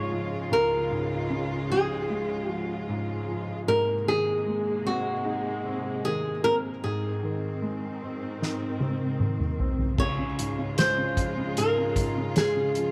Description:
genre	pop ballad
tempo	76 BPM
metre	4/4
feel	straight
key	Db major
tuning	A4 = 440 Hz
part	flamenco guitar	melody	0.0-12.9 s	Gb4 to Db5	-29 LUFS	equal	none
part	warm baby grand piano	accompaniment	0.0-12.9 s	Db2 to Eb4	-34 LUFS	equal	none
part	warm studio string section	sustained chords	0.0-12.9 s	Ab2 to F4	-36 LUFS	equal	none
part	soft-mallet drum kit	drums	8.4-12.9 s	crash cymbal, hi-hat, kick drum, snare drum, toms	-30 LUFS	equal	none
room	moderate spring reverb, RT60 2.6 s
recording	none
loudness	-27 LUFS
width	mono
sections	0.0-10.0 A section; 10.0-12.9 B section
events	drum fill 8.4-10.0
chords	0.0 Db; 3.7 Abadd9; 6.8 Ab; 10.0 Db

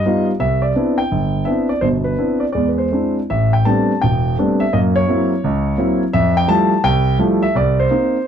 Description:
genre	solo jazz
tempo	168 BPM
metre	4/4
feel	swing 65% on 8ths, rubato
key	C major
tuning	A4 = 440 Hz
part	warm concert grand piano	solo	0.0-8.3 s	E1 to A5	-14 LUFS	equal	none
room	moderate studio reverb, RT60 0.5 s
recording	dark, warm production, nothing above 10.4 kHz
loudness	-14 LUFS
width	side -8 dB against mid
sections	0.0-3.3 A section; 3.3-8.3 B section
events	none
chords	0.4 Cmaj9; 2.5 E7b13; 3.3 Am11; 4.7 F#7#11; 6.1 Fmaj9; 7.6 Cm7

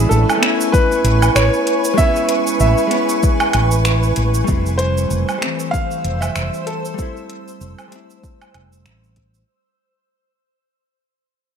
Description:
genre	sunset chillout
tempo	96 BPM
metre	4/4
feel	swing 57% on 16ths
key	unclear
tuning	A4 = 440 Hz
part	warm grand piano	melody	0.0-8.5 s	G#4 to F5	-21 LUFS	equal	tape echo
part	vintage hollow-body jazz guitar	accompaniment	0.0-9.5 s	E3 to E4	-22 LUFS	moving between left 7 dB and right 5 dB	auto-pan, tape echo
part	shimmering ambient pad	sustained chords	0.0-9.4 s	B4 to E6	-23 LUFS	right 2 dB	chorus, built-in reverb
part	mellow fretless electric bass	bass	0.0-9.4 s	F1 to A1	-16 LUFS	equal	none
part	deep house drum kit	drums	0.1-9.5 s	cabasa, finger snaps, hi-hat, woodblock	-22 LUFS	right 2 dB	overdrive
part	electronic kick drum	drums	0.7-9.3 s	none	-17 LUFS	equal	overdrive
room	light reverb, digital ambience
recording	none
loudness	-14 LUFS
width	side -7 dB against mid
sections	0.0-9.5 A section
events	fade-out 2.8-9.5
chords	0.0 Amaj9; 4.5 Fmaj7

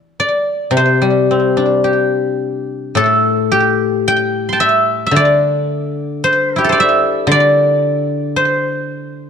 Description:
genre	chinese traditional, Chinese solo plucked strings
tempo	55 BPM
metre	4/4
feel	rubato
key	G zhi mode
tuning	A4 = 438 Hz
part	guzheng	solo	0.0-9.3 s	A2 to C6	-12 LUFS	left 1 dB	slapback echo
room	light reverb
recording	dark, warm production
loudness	-12 LUFS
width	side -7 dB against mid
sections	0.0-9.3 A section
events	none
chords	none

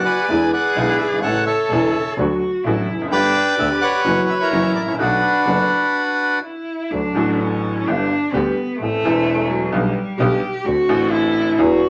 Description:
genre	tango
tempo	128 BPM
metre	4/4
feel	rubato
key	B minor, D major from 6.9 s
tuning	A4 = 440 Hz
part	bandoneon	melody	0.0-6.4 s	D4 to G#5	-20 LUFS	equal	none
part	warm cello	second line	0.0-11.9 s	F#3 to A4	-24 LUFS	equal	none
part	clear upright piano	accompaniment	0.3-11.8 s	E1 to A4	-22 LUFS	equal	none
part	clear double bass	bass	0.3-11.8 s	E1 to E2	-28 LUFS	equal	none
room	wet studio reverb, RT60 0.5 s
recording	none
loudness	-19 LUFS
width	mono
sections	0.0-6.9 A section; 6.9-11.9 B section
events	stop 5.9-6.9; cello solo 6.9-11.9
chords	0.3 E7; 1.2 A; 2.2 D; 3.1 Gadd9; 4.0 F#7sus4; 4.5 F#7; 5.0 Bm7; 6.9 D; 7.9 G; 8.8 Am; 9.7 G/B; 10.6 D7

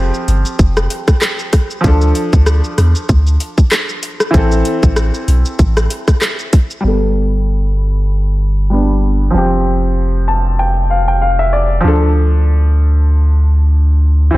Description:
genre	dancehall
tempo	96 BPM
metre	4/4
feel	swing 56% on 16ths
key	unclear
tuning	A4 = 440 Hz
part	clear baby grand piano	accompaniment	0.0-14.4 s	E3 to A5	-18 LUFS	equal	sidechain pumping, low-pass filter
part	punchy sub bass	bass	0.0-14.4 s	F1 to E2	-12 LUFS	equal	none
part	island pop drum kit	drums	0.1-6.8 s	handclaps, hi-hat, kick drum, rim click, shaker	-13 LUFS	equal	overdrive
room	light reverb, digital ambience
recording	none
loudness	-11 LUFS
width	side -18 dB against mid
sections	0.0-6.8 A section; 6.8-14.4 B section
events	filter sweep on grand piano 6.8-14.4; grand piano fill 10.0-11.8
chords	0.0 Fsus2; 1.8 Dm; 4.3 Am; 6.8 Gadd9; 9.3 Fsus2; 11.8 Dm

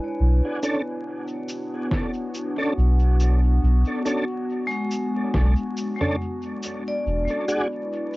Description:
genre	ambient dub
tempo	70 BPM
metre	4/4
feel	swing 56% on 16ths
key	unclear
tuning	A4 = 442 Hz
part	warbly tape-like pad	sustained chords	0.0-8.2 s	B3 to G#5	-28 LUFS	equal	chorus, built-in reverb, cassette tape
part	vibraphone with hard mallets	arpeggios	0.0-8.2 s	G#3 to D5	-30 LUFS	left 2 dB	cassette tape, dub echo
part	soft dub sub bass	bass	0.2-7.3 s	E1 to B1	-18 LUFS	equal	none
part	tonewheel organ	stabs	0.6-7.7 s	C#4 to A4	-28 LUFS	right 1 dB	chorus vibrato, fast rotary speaker, cassette tape, dub echo
part	lo-fi sampler-style drum kit	drums	0.6-7.7 s	cabasa, snare drum, toms	-31 LUFS	equal	cassette tape, dub echo
part	electronic kick drum	drums	1.9-5.5 s	none	-27 LUFS	equal	cassette tape
room	light reverb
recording	home recording on cassette, vinyl crackle, nothing above 7.7 kHz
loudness	-21 LUFS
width	side -21 dB against mid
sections	0.0-8.2 A section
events	none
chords	0.2 Bm7; 7.1 E7

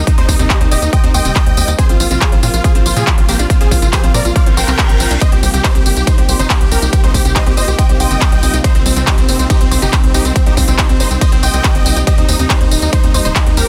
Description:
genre	uplifting trance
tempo	140 BPM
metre	4/4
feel	straight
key	C minor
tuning	A4 = 437 Hz
part	big supersaw lead	melody	0.0-13.7 s	Bb3 to G5	-22 LUFS	equal	sidechain pumping, tape echo
part	dark grand piano	second line	0.0-13.7 s	C4 to G5	-29 LUFS	equal	none
part	lush unison pad	sustained chords	0.0-13.7 s	C3 to F4	-28 LUFS	equal	chorus, sidechain pumping
part	tight sequencer bass	bass	0.0-13.6 s	Eb1 to Bb2	-18 LUFS	equal	sidechain pumping
part	analog pluck	arpeggios	0.1-13.6 s	C3 to C5	-25 LUFS	equal	chorus, sidechain pumping, dub echo
part	big-room dance drum kit	drums	0.1-13.7 s	handclaps, hi-hat, ride cymbal, tambourine	-21 LUFS	equal	overdrive
part	electronic kick drum	drums	0.1-13.4 s	none	-15 LUFS	equal	overdrive
part	reverse cymbal	sound effects	4.5-5.2 s	none	-28 LUFS	equal	none
room	digital ambience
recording	dense, heavily limited modern master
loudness	-12 LUFS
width	mono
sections	0.0-13.7 A section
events	reverse cymbal 4.5-5.2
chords	0.0 Eb; 1.8 Bb5; 5.2 Cm7; 12.1 Eb

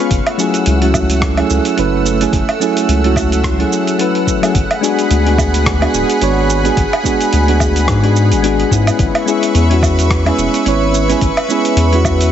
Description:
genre	sunset chillout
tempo	108 BPM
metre	4/4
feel	swing 57% on 16ths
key	F# minor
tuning	A4 = 440 Hz
part	soft electric-piano-like synth keys	accompaniment	0.0-12.3 s	F#3 to C#5	-15 LUFS	moving between left 6 dB and right 7 dB	chorus, auto-pan, tape echo
part	lush unison pad	sustained chords	0.0-12.3 s	A3 to E6	-19 LUFS	equal	chorus
part	round analog bass	bass	0.1-12.3 s	D1 to G#2	-15 LUFS	equal	tube saturation
part	dusty soul sampler-style drum kit	drums	0.1-12.3 s	cabasa, hi-hat, rim click, woodblock	-20 LUFS	right 2 dB	none
part	electronic kick drum	drums	0.1-12.2 s	none	-19 LUFS	left 1 dB	none
room	light reverb, digital ambience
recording	heavily compressed radio sound, nothing above 8.0 kHz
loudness	-11 LUFS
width	side -9 dB against mid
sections	0.1-12.3 A section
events	none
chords	0.1 F#m7; 4.6 G#m7b5; 9.0 C#m7

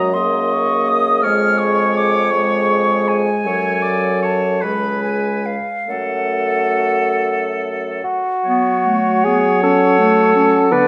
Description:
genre	classical, slow romantic movement for wind quintet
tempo	45-56 BPM (dotted quarters)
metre	6/8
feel	rubato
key	F# minor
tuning	A4 = 441 Hz
part	concert flute	melody	0.0-10.9 s	E#5 to E#6	-23 LUFS	equal	none
part	clear oboe	second line	0.0-10.9 s	A4 to D#5	-24 LUFS	equal	none
part	warm French horn	accompaniment	0.0-10.9 s	D3 to A#3	-24 LUFS	equal	none
part	warm clarinet	accompaniment	0.0-10.9 s	A3 to A4	-25 LUFS	equal	none
part	mellow bassoon	bass	0.0-10.9 s	C#2 to B4	-21 LUFS	equal	none
room	wet recital hall reverb, RT60 1.6 s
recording	nothing above 10.8 kHz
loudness	-17 LUFS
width	mono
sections	0.0-8.5 A section; 8.5-10.9 A section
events	none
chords	0.0 G#5/F#; 1.2 C#/E#; 3.5 F#m; 4.6 C#5; 5.9 F#m

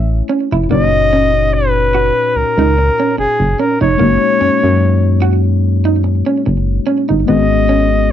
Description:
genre	R&B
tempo	73 BPM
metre	4/4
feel	swing 54% on 16ths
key	F# major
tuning	A4 = 440 Hz
part	warm flugelhorn	melody	0.0-8.1 s	G#4 to E5	-15 LUFS	equal	slapback echo
part	mellow tine electric piano	accompaniment	0.0-8.1 s	A#2 to G#5	-18 LUFS	left 14 dB	none
part	solid FM bass	bass	0.0-8.1 s	E#1 to F#2	-14 LUFS	equal	transformer saturation
part	electric guitar through a small old amp	second line	0.3-7.9 s	A#3 to F#4	-17 LUFS	right 6 dB	slapback echo
room	little or no reverb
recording	dry, close 1970s-style studio recording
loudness	-11 LUFS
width	side -10 dB against mid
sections	0.0-8.1 A section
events	none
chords	0.0 Amaj7; 0.7 F#6; 7.3 G#m11

